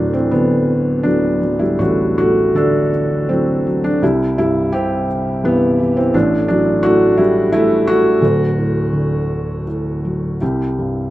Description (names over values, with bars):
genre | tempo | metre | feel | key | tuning
classical, lyrical solo piano | 78-87 BPM | 3/4 | rubato | unclear | A4 = 440 Hz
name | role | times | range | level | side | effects
felt-muted upright piano | solo | 0.0-11.1 s | D1 to A4 | -14 LUFS | equal | none
room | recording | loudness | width
light reverb | close, detailed microphones | -14 LUFS | side -15 dB against mid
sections
0.0-10.4 A section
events
none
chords
0.0 D; 4.0 C; 6.1 A5; 8.2 D; 10.4 C